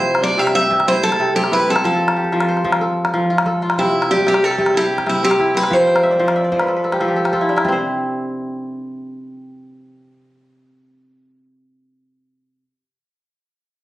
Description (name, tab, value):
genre	west african traditional, West African string and xylophone music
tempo	124 BPM (dotted quarters)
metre	12/8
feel	straight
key	unclear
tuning	A4 = 438 Hz
part	picked steel-string acoustic guitar	melody	0.0-7.3 s	E4 to E5	-16 LUFS	equal	none
part	kora	arpeggios	0.0-12.7 s	C3 to G5	-19 LUFS	equal	none
part	calabash	percussion	0.1-7.8 s	none	-22 LUFS	left 1 dB	none
room	moderate studio reverb, RT60 0.5 s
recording	recorded on a phone in the room, studio reverb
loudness	-14 LUFS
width	side -16 dB against mid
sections	0.0-7.7 A section; 7.7-11.5 B section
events	kora fill 5.9-7.7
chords	0.0 C; 1.8 F; 3.8 C; 5.7 F; 7.7 N.C.